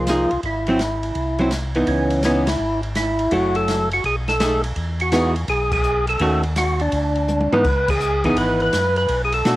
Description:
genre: soul jazz organ trio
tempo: 166 BPM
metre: 4/4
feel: swing 66% on 8ths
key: C# minor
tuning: A4 = 438 Hz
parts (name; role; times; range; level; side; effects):
- percussive tonewheel organ; melody; 0.0-9.6 s; C#4 to B4; -20 LUFS; equal; slow rotary speaker, overdrive, cassette tape
- archtop guitar, miked and amplified; accompaniment; 0.0-9.6 s; D#3 to Ab4; -20 LUFS; right 1 dB; cassette tape
- mellow tonewheel organ; bass; 0.0-9.6 s; F#1 to B2; -24 LUFS; equal; overdrive, chorus vibrato, slow rotary speaker
- open jazz drum kit; drums; 0.1-9.6 s; crash cymbal, hi-hat, kick drum, ride cymbal, snare drum, toms; -27 LUFS; equal; cassette tape
room: light reverb, small room ambience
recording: home recording on cassette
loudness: -17 LUFS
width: side -16 dB against mid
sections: 0.0-1.9 A section; 1.9-9.6 B section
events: band accent 2.4, 5.7, 7.8; drum fill 7.3-7.6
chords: 0.4 Ab7b13; 1.9 C#m9; 3.3 F#m7; 4.0 B6; 4.8 Emaj7; 6.2 D#m7b5; 6.9 Dsus2; 7.6 C#m9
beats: 0.07 | 0.43 0.79 1.16 1.51 | 1.88 2.24 2.60 2.96 | 3.32 3.68 4.04 4.40 | 4.76 5.12 5.48 5.84 | 6.20 6.56 6.92 7.28 | 7.64 8.01 8.37 8.73 | 9.09 9.45

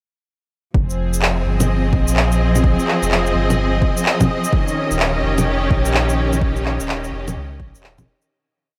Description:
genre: future garage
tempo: 127 BPM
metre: 4/4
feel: swing 63% on 16ths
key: F minor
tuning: A4 = 440 Hz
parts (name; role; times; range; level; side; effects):
- rich studio string section; sustained chords; 0.7-8.3 s; Eb3 to Eb5; -23 LUFS; equal; sidechain pumping
- warm sub bass; bass; 0.7-8.1 s; Eb1 to Db2; -23 LUFS; equal; sidechain pumping
- electronic kick drum; drums; 0.7-8.1 s; none; -21 LUFS; equal; none
- wind-like tuned noise texture; texture; 1.4-8.3 s; Eb5; -32 LUFS; equal; built-in reverb
- electronic shaker, handclaps and bongos; drums; 0.9-8.3 s; none; -24 LUFS; equal; none
room: moderate huge ambient reverb, RT60 7.5 s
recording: dreamy mix soaked in reverb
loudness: -18 LUFS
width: mono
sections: 0.8-8.3 groove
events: fade-out 5.8-8.3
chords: 0.8 Fm7; 4.5 Eb7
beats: | 0.75 1.22 1.70 2.17 | 2.64 3.11 3.58 4.06 | 4.53 5.00 5.47 5.95 | 6.42 6.89 7.37 7.84

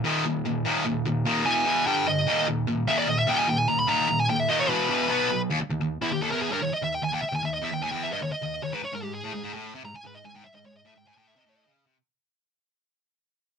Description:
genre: metal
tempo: 148 BPM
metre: 4/4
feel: straight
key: Eb phrygian dominant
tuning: A4 = 439 Hz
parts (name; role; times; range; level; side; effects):
- sludgy distorted guitar; riff; 0.0-12.0 s; Eb2 to B3; -26 LUFS; equal; overdrive
- high-gain lead guitar; melody; 1.5-11.7 s; Fb4 to Cb6; -26 LUFS; equal; distortion
room: light reverb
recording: band playing live in one room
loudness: -23 LUFS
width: side -7 dB against mid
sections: 0.0-5.5 A section; 5.5-12.0 B section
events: lead electric guitar solo 0.0-5.5, 5.5-12.0; fade-out 5.5-12.0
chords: 0.0 Eb5; 1.5 E5; 1.9 G5; 2.3 Eb5; 4.7 E5; 5.1 B5; 5.5 N.C.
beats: 0.25 | 0.66 1.06 1.47 1.87 | 2.27 2.68 3.08 3.48 | 3.89 4.29 4.70 5.10 | 5.50 5.91 6.31 6.71 | 7.12 7.52 7.93 8.33 | 8.74 9.14 9.55 9.95 | 10.36 10.76 11.16 11.57

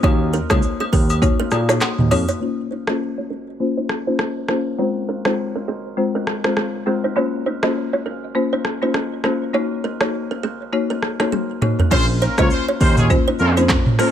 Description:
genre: afrobeats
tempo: 101 BPM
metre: 4/4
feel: swing 58% on 16ths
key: Bb minor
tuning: A4 = 440 Hz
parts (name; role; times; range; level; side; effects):
- folk marimba with medium mallets; accompaniment; 0.0-14.1 s; Ab3 to Db5; -22 LUFS; left 3 dB; low-pass filter
- kalimba; riff; 0.0-14.1 s; C4 to Eb5; -25 LUFS; right 4 dB; low-pass filter, digital delay
- barky tine electric piano; bass; 0.0-2.2, 11.9-13.7 s; Bb1 to Bb2; -20 LUFS; right 1 dB; lush chorus
- afro-pop drum kit; drums; 0.0-14.1 s; crash cymbal, handclaps, hi-hat, kick drum, rim click, shaker, toms; -19 LUFS; equal; vintage 12-bit sampler grit
- agogo bells and woodblock; percussion; 0.0-2.3 s; none; -28 LUFS; left 4 dB; none
- clear horn section; second line; 11.9-13.5 s; Db4 to Db5; -22 LUFS; left 1 dB; digital delay
room: small room ambience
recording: faint mains hum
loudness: -17 LUFS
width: side -10 dB against mid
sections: 0.0-2.4 A section; 2.4-11.9 B section; 11.9-14.1 A section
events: filter sweep 2.4-11.9; drum fill 11.3-11.9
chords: 0.0 Ebm7; 2.4 Bbmadd9; 4.8 Fm; 7.2 Bbmadd9; 9.5 Ebm7; 11.9 Bbmadd9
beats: | 0.03 0.63 1.22 1.81 | 2.41 3.00 3.60 4.19 | 4.79 5.38 5.97 6.57 | 7.16 7.75 8.35 8.94 | 9.54 10.13 10.73 11.32 | 11.91 12.51 13.10 13.70

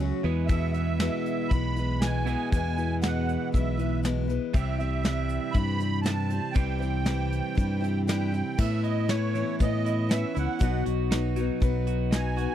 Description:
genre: folk rock and heartland rock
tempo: 119 BPM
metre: 4/4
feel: straight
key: unclear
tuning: A4 = 440 Hz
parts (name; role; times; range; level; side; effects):
- picked steel-string acoustic guitar; accompaniment; 0.0-12.5 s; E2 to F#4; -33 LUFS; left 10 dB; none
- twelve-string electric guitar; riff; 0.0-12.5 s; E2 to G#4; -33 LUFS; right 11 dB; none
- fingered electric bass; bass; 0.0-12.5 s; B1 to A2; -28 LUFS; left 1 dB; none
- musette accordion; melody; 0.5-12.5 s; C#5 to B5; -33 LUFS; right 5 dB; none
- soft brush drum kit; drums; 0.5-12.5 s; crash cymbal, hi-hat, kick drum, snare drum; -25 LUFS; equal; none
room: little or no reverb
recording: dry, close 1970s-style studio recording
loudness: -24 LUFS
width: side -11 dB against mid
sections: 0.0-8.6 A section; 8.6-12.5 B section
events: none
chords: 0.2 E; 4.5 C; 8.6 Aadd9; 10.6 B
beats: | 0.49 1.00 1.51 2.01 | 2.52 3.02 3.53 4.03 | 4.54 5.04 5.55 6.06 | 6.56 7.07 7.57 8.08 | 8.58 9.09 9.59 10.10 | 10.60 11.11 11.61 12.12

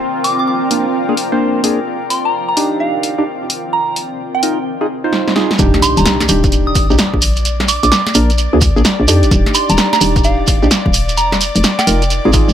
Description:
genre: UK garage, two-step garage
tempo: 129 BPM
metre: 4/4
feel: swing 64% on 16ths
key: Eb major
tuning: A4 = 441 Hz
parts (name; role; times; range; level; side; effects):
- airy breathy pad; sustained chords; 0.0-12.5 s; D5 to G5; -25 LUFS; left 3 dB; chorus, sidechain pumping
- granular cloud pad; texture; 0.0-12.5 s; Eb3 to D5; -24 LUFS; equal; built-in reverb, sidechain pumping
- soft synth bell; melody; 0.2-12.3 s; F5 to Eb6; -18 LUFS; right 2 dB; chorus, phaser, digital delay
- punchy analog drum machine; drums; 0.2-12.5 s; hi-hat, snare drum; -17 LUFS; left 1 dB; none
- percussive organ stab; stabs; 0.7-12.5 s; Bb3 to C5; -17 LUFS; right 1 dB; chorus, digital delay
- hollow knocking FM bass; bass; 5.6-12.5 s; Eb1 to F2; -15 LUFS; equal; sidechain pumping
- electronic kick drum; drums; 5.6-12.5 s; none; -15 LUFS; equal; none
- shekere; percussion; 5.6-12.5 s; none; -19 LUFS; right 6 dB; none
- impact; sound effects; 5.6-7.5 s; none; -23 LUFS; equal; none
room: light reverb, digital ambience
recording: none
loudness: -11 LUFS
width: side -10 dB against mid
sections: 0.0-5.6 A section; 5.6-12.5 B section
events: filter sweep on analog synth pad 0.0-5.6; drum fill 5.1-5.6; drop 5.6-12.5; impact 5.6-7.5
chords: 0.0 Bb7; 1.9 Ebmaj7; 3.7 Fm7; 5.6 Ebmaj7; 7.2 Bb7; 9.3 Ebmaj7; 11.2 Fm7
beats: | 0.01 0.48 0.94 1.41 | 1.87 2.34 2.80 3.27 | 3.73 4.20 4.66 5.13 | 5.59 6.06 6.52 6.99 | 7.45 7.92 8.38 8.85 | 9.31 9.78 10.24 10.71 | 11.17 11.64 12.10

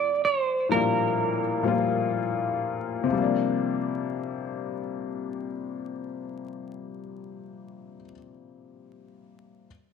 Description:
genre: R&B, neo-soul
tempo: 60-65 BPM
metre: 4/4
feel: swing 58% on 16ths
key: Bb major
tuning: A4 = 436 Hz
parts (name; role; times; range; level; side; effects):
- semi-hollow electric guitar; melody; 0.0-2.1 s; Bb4 to D5; -26 LUFS; right 5 dB; lush chorus, tape echo
- warm upright piano; accompaniment; 0.7-9.7 s; A2 to F4; -27 LUFS; left 6 dB; none
room: light reverb, small room ambience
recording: 1960s-style stereo, vinyl crackle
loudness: -25 LUFS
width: side -6 dB against mid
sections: 0.0-3.1 A section; 3.1-7.2 B section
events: slowing down 0.0-3.1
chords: 0.0 Gm9; 3.1 Bb69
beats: 0.24 1.17 2.13 | 3.12 4.13 5.14 6.15

